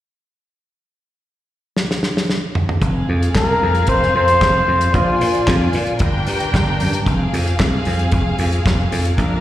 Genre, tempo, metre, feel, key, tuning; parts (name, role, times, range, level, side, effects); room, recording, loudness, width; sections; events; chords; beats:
disco; 113 BPM; 4/4; straight; F dorian; A4 = 440 Hz
damped 70s drum kit; drums; 1.8-9.3 s; handclaps, hi-hat, kick drum, snare drum, toms; -20 LUFS; equal
rich studio string section; second line; 2.8-9.4 s; C4 to Ab5; -23 LUFS; equal; slapback echo, tape echo
dry thumbed slap bass; bass; 2.8-9.4 s; F1 to Bb2; -18 LUFS; equal
breathy flugelhorn; melody; 3.4-5.5 s; F4 to C5; -16 LUFS; left 1 dB; slapback echo
light reverb, small room ambience; live gig heard through the venue's PA, recital hall reverb; -15 LUFS; side -13 dB against mid
0.7-2.8 A section; 2.8-9.4 B section
drum fill 1.8-2.8
0.7 N.C.; 2.8 Fm; 4.9 Bb7; 6.0 Gm; 7.1 Fm
| 0.69 1.22 1.75 2.29 | 2.82 3.35 3.88 4.41 | 4.94 5.47 6.00 6.53 | 7.06 7.59 8.12 8.65 | 9.18